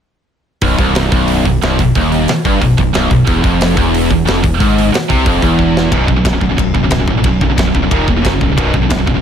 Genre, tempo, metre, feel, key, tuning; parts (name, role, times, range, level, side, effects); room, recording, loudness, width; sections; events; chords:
heavy metal; 181 BPM; 4/4; straight; A4 = 438 Hz
heavy high-gain guitar; riff; 0.6-9.2 s; B1 to F#3; -17 LUFS; left 10 dB; distortion
heavy high-gain guitar; riff; 0.6-9.2 s; B1 to F#3; -16 LUFS; right 9 dB; distortion
sludgy distorted guitar; riff; 0.6-5.9 s; B1 to C3; -17 LUFS; equal; overdrive
overdriven picked electric bass; bass; 0.6-9.2 s; B0 to C2; -17 LUFS; equal
tight metal drum kit; drums; 0.6-9.2 s; hi-hat, kick drum, ride cymbal, snare drum; -16 LUFS; equal
studio ambience; -10 LUFS; side -8 dB against mid
0.6-5.9 A section; 5.9-9.2 B section
drum fill 5.6-5.9
0.6 B; 3.3 Fmmaj7/E; 5.9 B5; 7.9 D#5; 8.2 F#5; 8.6 B5